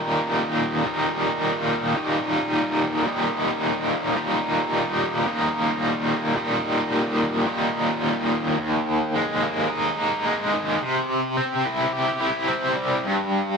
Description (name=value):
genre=rock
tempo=108 BPM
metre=4/4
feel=straight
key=Eb major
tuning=A4 = 439 Hz
part: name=overdriven electric guitar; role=solo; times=0.0-13.6 s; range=Eb2 to G4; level=-21 LUFS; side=equal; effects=tremolo
room=light reverb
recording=none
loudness=-21 LUFS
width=side -5 dB against mid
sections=0.0-8.6 A section; 8.6-13.6 B section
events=none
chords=0.0 Eb; 8.6 Ebsus4; 10.8 C; 13.1 G5